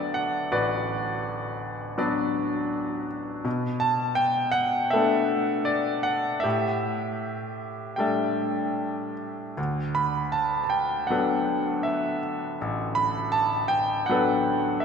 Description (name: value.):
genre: classical, lyrical solo piano.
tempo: 80 BPM.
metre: 4/4.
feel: rubato.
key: D major.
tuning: A4 = 441 Hz.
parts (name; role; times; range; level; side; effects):
bright grand piano; solo; 0.0-14.8 s; A1 to B5; -24 LUFS; equal; none.
room: wet church reverb, RT60 3.3 s.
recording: recorded in a church or concert hall.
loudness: -24 LUFS.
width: side -6 dB against mid.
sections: 0.0-14.8 A section.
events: none.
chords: 0.0 D6; 3.5 Bm7; 6.5 A7sus4; 9.6 D6.